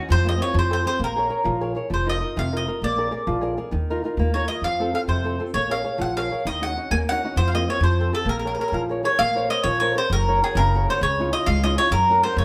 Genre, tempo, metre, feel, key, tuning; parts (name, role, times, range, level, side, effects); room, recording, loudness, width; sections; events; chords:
italian folk, Italian serenade; 132 BPM (dotted quarters); 6/8; rubato; Bb minor; A4 = 440 Hz
flamenco guitar; accompaniment; 0.0-12.4 s; C3 to D5; -28 LUFS; equal
mandolin; melody; 0.1-12.4 s; Ab4 to Ab5; -25 LUFS; equal
upright bass; bass; 0.1-12.4 s; F1 to Gb2; -27 LUFS; equal
moderate studio reverb, RT60 0.8 s; band playing live in one room; -22 LUFS; mono
0.0-1.9 A section; 1.9-9.2 A section; 9.2-12.4 B section
0.1 Fsus4; 0.6 F; 1.0 Bbm7; 1.9 F7sus4; 2.8 Bb7; 3.7 Ebsus2; 4.6 F; 5.5 Bbm7; 6.5 Ebm7; 7.4 Fsus4; 7.8 F; 8.3 Bbm7; 9.2 Bbmadd9; 10.1 Gb; 11.0 Dbadd9; 11.9 Gb